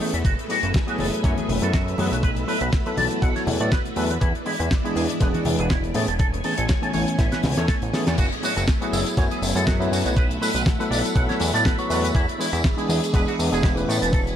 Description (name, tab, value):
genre	nu-disco, nu disco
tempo	121 BPM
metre	4/4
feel	swing 55% on 16ths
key	F# minor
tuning	A4 = 440 Hz
part	tine electric piano	accompaniment	0.0-14.4 s	E3 to C#6	-27 LUFS	equal	medium tremolo, sidechain pumping, analog delay
part	string machine, full ensemble	sustained chords	0.0-14.4 s	G#3 to B5	-30 LUFS	equal	ensemble chorus, sidechain pumping
part	electric guitar with an envelope filter	riff	0.0-14.2 s	A3 to F#5	-29 LUFS	right 2 dB	wide subtle chorus, analog delay
part	damped 70s drum kit	drums	0.0-14.4 s	crash cymbal, hi-hat, snare drum, tambourine	-28 LUFS	left 2 dB	studio reverb, analog delay
part	fat analog bass	bass	0.1-14.4 s	E1 to A2	-25 LUFS	equal	none
part	electronic kick drum	drums	0.2-14.2 s	none	-22 LUFS	equal	studio reverb
part	congas	percussion	1.0-7.5 s	none	-34 LUFS	left 2 dB	none
room	light reverb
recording	echo-heavy mix, lossy compression artefacts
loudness	-19 LUFS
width	side -10 dB against mid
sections	0.0-8.2 A section; 8.2-14.4 B section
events	drum fill 7.2-8.2; band accent 8.1; drop 8.2-14.4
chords	0.2 F#m11; 2.2 B7sus4; 4.2 E7; 5.9 Amaj9; 8.2 F#m11; 10.2 B7sus4; 12.1 E7